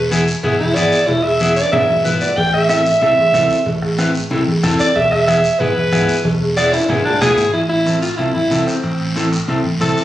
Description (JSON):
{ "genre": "latin, cumbia", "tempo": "186 BPM", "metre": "4/4", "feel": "straight", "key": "A harmonic minor", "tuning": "A4 = 440 Hz", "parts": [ { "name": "fingered electric bass", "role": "bass", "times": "0.0-9.9 s", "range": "E1 to C2", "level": "-22 LUFS", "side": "right 1 dB", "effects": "none" }, { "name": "clean electric guitar", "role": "accompaniment", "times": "0.1-10.0 s", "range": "B3 to B4", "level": "-19 LUFS", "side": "left 2 dB", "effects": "none" }, { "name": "congas", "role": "percussion", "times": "0.1-10.0 s", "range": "none", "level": "-23 LUFS", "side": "equal", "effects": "none" }, { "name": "cowbell and timbales", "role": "percussion", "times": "0.1-10.0 s", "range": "none", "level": "-24 LUFS", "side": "right 1 dB", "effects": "none" }, { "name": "guiro", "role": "percussion", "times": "0.1-10.0 s", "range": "none", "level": "-28 LUFS", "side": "left 2 dB", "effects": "none" }, { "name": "raspy alto saxophone", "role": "melody", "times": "0.6-10.0 s", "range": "C4 to G5", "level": "-15 LUFS", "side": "right 1 dB", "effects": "slapback echo" }, { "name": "bombo", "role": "percussion", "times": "2.4-7.4 s", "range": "none", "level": "-28 LUFS", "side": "equal", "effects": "none" } ], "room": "moderate studio ambience, RT60 0.5 s", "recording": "recorded on a phone in the room, studio reverb", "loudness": "-13 LUFS", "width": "side -13 dB against mid", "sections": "0.0-7.5 A section; 7.5-10.0 B section", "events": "alto saxophone solo 0.0-7.5; drum fill 1.6-2.4, 6.2-7.5", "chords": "0.0 E; 2.4 Am; 5.0 E; 7.5 Am", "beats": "0.12 0.44 0.76 | 1.08 1.41 1.73 2.05 | 2.38 2.70 3.02 3.34 | 3.67 3.99 4.31 4.63 | 4.96 5.28 5.60 5.92 | 6.25 6.57 6.89 7.22 | 7.54 7.86 8.19 8.51 | 8.84 9.16 9.48 9.81" }